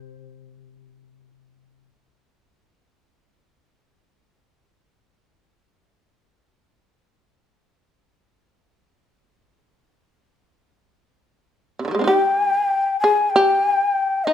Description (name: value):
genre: japanese traditional, Japanese chamber music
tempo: free time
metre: none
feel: none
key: C hirajoshi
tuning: A4 = 440 Hz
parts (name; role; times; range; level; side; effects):
- koto; accompaniment; 0.0-1.9 s; C3; -49 LUFS; left 9 dB; none
- shamisen; second line; 11.8-14.3 s; C3 to Ab4; -19 LUFS; right 1 dB; none
- breathy mellow shakuhachi; melody; 12.1-14.3 s; Eb5 to Ab5; -18 LUFS; left 3 dB; none
room: light reverb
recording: minimal, uncompressed stereo recording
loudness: -16 LUFS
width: side -9 dB against mid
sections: 0.0-12.1 A section; 12.1-14.3 B section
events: none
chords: none